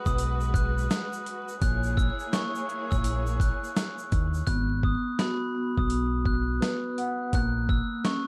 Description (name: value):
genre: hip hop, boom-bap hip-hop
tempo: 84 BPM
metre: 4/4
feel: swing 63% on 16ths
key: G# minor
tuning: A4 = 439 Hz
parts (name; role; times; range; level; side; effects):
- glockenspiel with soft plastic mallets; melody; 0.0-8.3 s; B5 to F#6; -36 LUFS; equal; none
- warm studio string section; sustained chords; 0.0-4.5 s; G#3 to C#5; -39 LUFS; equal; none
- deep dub fingered electric bass; bass; 0.1-7.8 s; G#1 to D#2; -31 LUFS; equal; none
- dusty soul sampler-style drum kit; drums; 0.1-8.3 s; hi-hat, kick drum, shaker, snare drum; -30 LUFS; equal; none
- egg shaker; percussion; 0.1-4.5 s; none; -50 LUFS; equal; none
- vibraphone with soft mallets; accompaniment; 4.5-8.3 s; A#3 to F#5; -33 LUFS; equal; cassette tape
room: studio reverb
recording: vinyl crackle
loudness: -28 LUFS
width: mono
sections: 0.0-4.5 A section; 4.5-8.3 B section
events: break 0.0-4.5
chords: 0.0 G#m7; 1.6 A#m7b5; 4.5 G#m7; 7.3 A#dim